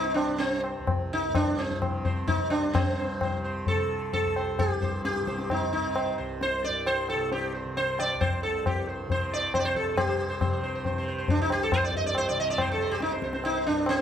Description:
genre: indian classical, Hindustani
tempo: 126-142 BPM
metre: 4/4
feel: straight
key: C raga shivaranjani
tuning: A4 = 440 Hz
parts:
  - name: sitar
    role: melody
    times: 0.0-14.0 s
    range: C4 to Eb5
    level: -27 LUFS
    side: right 1 dB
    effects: none
  - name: tanpura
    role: drone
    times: 0.0-14.0 s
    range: C2 to C3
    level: -35 LUFS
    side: right 1 dB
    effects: none
  - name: tabla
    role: percussion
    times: 0.2-14.0 s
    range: none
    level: -29 LUFS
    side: left 3 dB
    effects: none
room: light reverb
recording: close, detailed microphones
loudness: -25 LUFS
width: side -9 dB against mid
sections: 0.0-2.7 A section; 2.7-10.0 B section; 10.0-14.0 C section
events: speeding up 0.0-14.0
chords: none

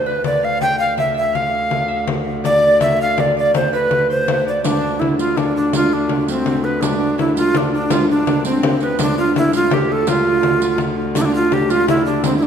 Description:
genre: medieval dance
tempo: 110 BPM (dotted quarters)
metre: 6/8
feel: straight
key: D dorian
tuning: A4 = 439 Hz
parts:
  - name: mellow tenor recorder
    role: melody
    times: 0.0-12.5 s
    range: C4 to G5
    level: -17 LUFS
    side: right 1 dB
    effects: none
  - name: concert harp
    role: second line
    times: 0.0-12.5 s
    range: B3 to G5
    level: -22 LUFS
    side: right 1 dB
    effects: none
  - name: dark viola da gamba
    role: drone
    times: 0.0-12.5 s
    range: D2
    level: -25 LUFS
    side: left 1 dB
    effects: none
  - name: frame drum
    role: percussion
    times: 0.1-12.4 s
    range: none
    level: -22 LUFS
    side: left 3 dB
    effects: none
  - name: riq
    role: percussion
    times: 4.6-12.5 s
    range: none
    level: -28 LUFS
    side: right 4 dB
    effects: none
room: wet concert hall reverb, RT60 2.4 s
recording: minimal, uncompressed stereo recording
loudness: -14 LUFS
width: side -8 dB against mid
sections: 0.0-4.6 A section; 4.6-12.5 A section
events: none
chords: none

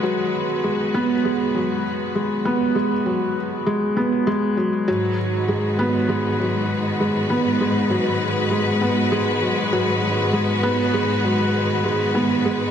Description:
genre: piano and strings electronica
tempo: 99 BPM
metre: 4/4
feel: straight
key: G# minor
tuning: A4 = 439 Hz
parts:
  - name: rich studio string section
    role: sustained chords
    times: 0.0-12.7 s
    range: D#3 to B4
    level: -25 LUFS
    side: left 2 dB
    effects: low-pass filter
  - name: felt-muted upright piano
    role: riff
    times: 0.0-12.7 s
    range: F#3 to B3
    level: -20 LUFS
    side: equal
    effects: ping-pong delay
  - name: warm chamber cello section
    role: bass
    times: 4.9-12.7 s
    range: G#2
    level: -25 LUFS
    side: right 1 dB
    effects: none
room: moderate concert hall reverb, RT60 1.9 s, studio ambience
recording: none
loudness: -18 LUFS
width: side -8 dB against mid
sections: 0.0-4.9 A section; 4.9-12.7 B section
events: build-up 0.0-4.9; filter sweep on string section 0.0-4.9; drop 4.9-12.7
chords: 0.0 G#m7

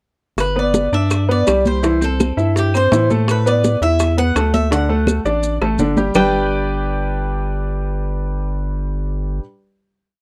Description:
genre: latin, Cuban son and guajira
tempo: 166 BPM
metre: 4/4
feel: straight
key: G major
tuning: A4 = 440 Hz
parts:
  - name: Cuban tres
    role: melody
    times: 0.4-9.4 s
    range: G4 to G5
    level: -23 LUFS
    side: equal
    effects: none
  - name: round analog bass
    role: bass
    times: 0.4-9.4 s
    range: G1 to A2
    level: -22 LUFS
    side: equal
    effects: none
  - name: bongos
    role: percussion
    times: 0.4-6.2 s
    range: none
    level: -26 LUFS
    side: equal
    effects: none
  - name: claves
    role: percussion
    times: 0.4-6.2 s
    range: none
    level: -32 LUFS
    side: equal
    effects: none
  - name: congas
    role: percussion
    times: 0.4-6.2 s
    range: none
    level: -24 LUFS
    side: equal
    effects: none
  - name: maracas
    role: percussion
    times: 0.4-6.2 s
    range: none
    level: -34 LUFS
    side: equal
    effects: none
  - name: bright baby grand piano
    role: arpeggios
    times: 0.6-9.4 s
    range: D3 to G5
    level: -22 LUFS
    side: equal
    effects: none
room: light reverb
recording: dry, close 1970s-style studio recording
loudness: -17 LUFS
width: mono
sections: 0.4-6.2 verse; 6.2-9.0 final chord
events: drum fill 5.3-6.2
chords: 0.4 G; 1.8 C; 3.3 Asus2; 4.7 D; 6.2 G

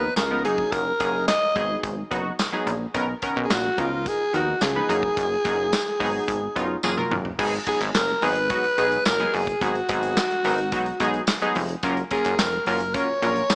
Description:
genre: early-eighties boogie funk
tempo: 108 BPM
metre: 4/4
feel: straight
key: G# dorian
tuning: A4 = 440 Hz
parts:
  - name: growling alto saxophone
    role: melody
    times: 0.0-13.6 s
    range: E#4 to D#5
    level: -23 LUFS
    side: equal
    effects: none
  - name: funky polysynth comp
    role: accompaniment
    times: 0.0-13.4 s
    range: D#3 to B4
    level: -26 LUFS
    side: equal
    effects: chorus
  - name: plucky analog bass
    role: bass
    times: 0.0-13.6 s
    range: E#1 to D#2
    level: -28 LUFS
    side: equal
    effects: none
  - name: modern studio drum kit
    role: drums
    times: 0.2-13.6 s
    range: crash cymbal, handclaps, hi-hat, kick drum, snare drum, toms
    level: -28 LUFS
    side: equal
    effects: none
  - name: tambourine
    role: percussion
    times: 0.2-13.6 s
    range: none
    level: -31 LUFS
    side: equal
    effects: none
room: light reverb, studio ambience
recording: small speaker sound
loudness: -21 LUFS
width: side -32 dB against mid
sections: 0.0-7.4 A section; 7.4-13.6 B section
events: drum fill 6.8-7.4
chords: 0.4 F#69; 1.6 G#m7; 2.9 Bmaj9; 3.8 C#13; 4.9 F#69; 6.0 G#m7; 6.8 F#maj9; 7.4 G#m7; 11.8 F#maj7

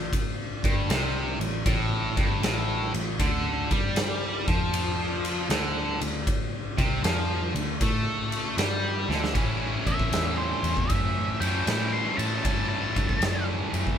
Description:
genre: blues rock power trio and southern rock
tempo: 78 BPM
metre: 4/4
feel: swing 67% on 8ths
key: A mixolydian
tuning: A4 = 439 Hz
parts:
  - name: distorted electric guitar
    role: riff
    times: 0.0-14.0 s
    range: G2 to E4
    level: -28 LUFS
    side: equal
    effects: overdrive
  - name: vintage muted picked electric bass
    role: bass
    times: 0.0-13.9 s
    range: G1 to A2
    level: -30 LUFS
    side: equal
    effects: none
  - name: oversized low-tuned drum kit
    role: drums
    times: 0.1-14.0 s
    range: kick drum, ride cymbal, snare drum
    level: -28 LUFS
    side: equal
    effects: none
  - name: octave-fuzz lead guitar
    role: melody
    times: 9.9-13.4 s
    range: C5 to C6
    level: -30 LUFS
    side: left 1 dB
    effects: distortion
room: light reverb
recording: band playing live in one room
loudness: -24 LUFS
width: side -8 dB against mid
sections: 0.0-9.4 A section; 9.4-14.0 B section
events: drum fill 9.0-9.4; lead electric guitar solo 9.4-14.0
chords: 0.0 Gsus24; 3.2 D5; 9.4 A

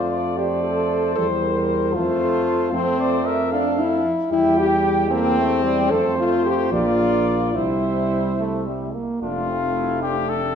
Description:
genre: classical, brass quintet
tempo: 70-77 BPM (dotted quarters)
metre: 6/8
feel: straight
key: F major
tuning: A4 = 440 Hz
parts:
  - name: warm trumpet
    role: melody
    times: 0.0-10.6 s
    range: F4 to G5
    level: -26 LUFS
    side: left 4 dB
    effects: none
  - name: clear trombone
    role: accompaniment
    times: 0.0-10.6 s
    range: G3 to Bb3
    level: -26 LUFS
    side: right 4 dB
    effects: none
  - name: warm French horn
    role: accompaniment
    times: 0.0-10.6 s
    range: C4 to Bb4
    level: -22 LUFS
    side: left 2 dB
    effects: none
  - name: mellow bass trombone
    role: bass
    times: 0.0-10.6 s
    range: F1 to F2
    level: -26 LUFS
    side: right 1 dB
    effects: none
  - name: warm flugelhorn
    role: second line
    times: 0.1-10.6 s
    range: C4 to D5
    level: -27 LUFS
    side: right 4 dB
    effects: none
room: wet recital hall reverb, RT60 1.3 s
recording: recorded in a church or concert hall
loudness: -18 LUFS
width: side -7 dB against mid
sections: 0.0-9.2 A section; 9.2-10.6 B section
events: none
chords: 0.0 F; 1.2 C7/E; 1.9 F; 4.3 C7/E; 5.9 F; 6.7 Bb; 7.6 C; 9.2 F

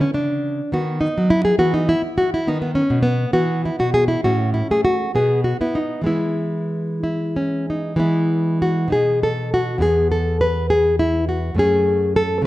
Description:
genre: classical, baroque-style dance for nylon-string guitar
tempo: 61-70 BPM (dotted quarters)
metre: 6/8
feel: rubato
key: E major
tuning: A4 = 438 Hz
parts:
  - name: nylon-string guitar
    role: solo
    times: 0.0-12.5 s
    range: E2 to B4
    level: -17 LUFS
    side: equal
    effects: none
room: moderate recital hall reverb, RT60 1.4 s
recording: dark, warm production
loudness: -17 LUFS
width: side -16 dB against mid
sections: 0.0-8.0 A section; 8.0-12.5 B section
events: none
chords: 0.0 N.C.; 0.7 B/D#; 1.6 E5; 2.5 B/D#; 3.3 E5; 4.2 A; 5.2 N.C.; 6.1 E; 8.9 B; 9.8 E5; 11.6 F#m

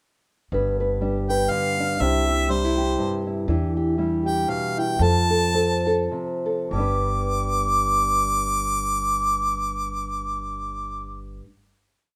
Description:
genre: acoustic folk duo or small band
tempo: 95-122 BPM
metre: 3/4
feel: swing 56% on 8ths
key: G mixolydian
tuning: A4 = 440 Hz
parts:
  - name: nylon-string guitar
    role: accompaniment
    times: 0.5-11.5 s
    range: G2 to B4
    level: -27 LUFS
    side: equal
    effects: none
  - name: upright bass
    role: bass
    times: 0.5-11.4 s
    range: G1 to F2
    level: -30 LUFS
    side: equal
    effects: none
  - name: bright harmonica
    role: melody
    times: 1.3-11.2 s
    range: C5 to D6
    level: -26 LUFS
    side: equal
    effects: none
room: moderate large studio reverb, RT60 0.9 s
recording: none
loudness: -23 LUFS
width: mono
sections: 0.5-6.7 verse; 6.7-10.5 final chord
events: slowing down 3.5-6.7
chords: 0.5 G; 2.0 Cadd9; 3.5 Em7; 5.0 F; 6.7 G

